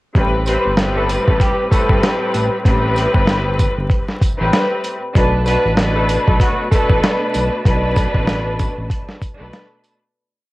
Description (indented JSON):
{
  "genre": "hip hop, boom-bap hip-hop",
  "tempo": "96 BPM",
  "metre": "4/4",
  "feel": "swing 57% on 16ths",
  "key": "A minor",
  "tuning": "A4 = 438 Hz",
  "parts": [
    { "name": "rich symphonic string section", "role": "accompaniment", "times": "0.1-10.0 s", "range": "A2 to B4", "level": "-18 LUFS", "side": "left 1 dB", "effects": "cassette tape, high-pass filter, low-pass filter" },
    { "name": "smooth synth bass", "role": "bass", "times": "0.2-9.5 s", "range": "G1 to B1", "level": "-20 LUFS", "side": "equal", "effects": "none" },
    { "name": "dusty soul sampler-style drum kit", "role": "drums", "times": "0.2-10.0 s", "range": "hi-hat, kick drum, snare drum", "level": "-16 LUFS", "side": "equal", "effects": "vintage 12-bit sampler grit, cassette tape" },
    { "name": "dark horn section", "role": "stabs", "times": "0.5-7.2 s", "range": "F#3 to C5", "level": "-24 LUFS", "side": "right 2 dB", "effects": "high-pass filter, low-pass filter, cassette tape, analog delay" },
    { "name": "tambourine", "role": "percussion", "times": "0.5-10.0 s", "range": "none", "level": "-35 LUFS", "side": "right 5 dB", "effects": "none" }
  ],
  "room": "little or no reverb",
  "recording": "home recording on cassette, vinyl crackle",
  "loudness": "-14 LUFS",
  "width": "side -19 dB against mid",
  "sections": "0.2-10.2 hook",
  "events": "fade-out 7.7-10.2",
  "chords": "0.2 Am9; 5.2 Bm7",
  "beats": "| 0.15 0.78 1.40 2.03 | 2.65 3.28 3.90 4.53 | 5.15 5.78 6.40 7.03 | 7.65 8.28 8.90 9.53"
}